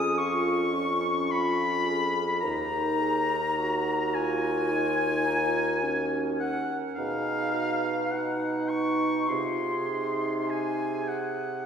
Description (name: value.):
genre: classical, slow romantic movement for wind quintet.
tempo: 52 BPM.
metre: 4/4.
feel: rubato.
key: unclear.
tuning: A4 = 441 Hz.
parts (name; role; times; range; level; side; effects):
mellow hollow silver concert flute; melody; 0.0-11.7 s; E#5 to D#6; -31 LUFS; left 4 dB; none.
bright oboe; second line; 0.0-11.7 s; E#5 to D#6; -32 LUFS; left 1 dB; none.
mellow French horn; accompaniment; 0.0-11.4 s; C#4 to A#4; -33 LUFS; right 2 dB; none.
warm clarinet; accompaniment; 0.0-11.5 s; C#4 to G#4; -34 LUFS; right 3 dB; none.
warm bassoon; bass; 0.0-11.7 s; D#2 to B#2; -31 LUFS; right 1 dB; none.
room: wet scoring stage reverb, RT60 2.0 s.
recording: heard from further back in the room.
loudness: -25 LUFS.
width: side -7 dB against mid.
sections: 0.0-11.7 A section.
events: none.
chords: 0.0 C#/E#; 2.4 D#m7; 7.0 B; 9.3 G#/B#.